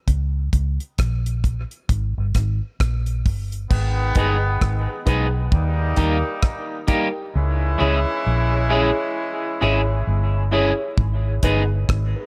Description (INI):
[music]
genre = dub reggae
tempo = 66 BPM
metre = 4/4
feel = swing 59% on 16ths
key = G# harmonic minor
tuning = A4 = 442 Hz
[part]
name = vintage muted fingered electric bass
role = bass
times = 0.1-12.1 s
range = G1 to D#2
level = -23 LUFS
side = equal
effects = none
[part]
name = damped 70s drum kit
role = drums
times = 0.1-12.1 s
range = crash cymbal, hi-hat, kick drum, rim click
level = -22 LUFS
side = equal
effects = none
[part]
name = clear horn section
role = second line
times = 3.7-10.5 s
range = D#3 to E4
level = -29 LUFS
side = equal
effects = dub echo
[part]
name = electric guitar at the edge of break-up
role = accompaniment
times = 4.2-11.6 s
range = G3 to G#4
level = -29 LUFS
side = equal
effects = dub echo
[part]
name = warm concert grand piano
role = stabs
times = 4.2-12.2 s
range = D#4 to C#5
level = -29 LUFS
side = equal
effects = dub echo
[sound]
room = light reverb, small room ambience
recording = none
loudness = -21 LUFS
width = mono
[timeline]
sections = 0.0-3.7 A section; 3.7-12.3 B section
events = break 0.0-3.7; part muted 7.3-11.0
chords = 0.1 C#5; 3.7 G#m; 5.5 D#; 7.3 C#m; 11.0 G#m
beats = | 0.07 0.98 1.89 2.80 | 3.71 4.61 5.52 6.43 | 7.34 8.25 9.15 10.06 | 10.97 11.88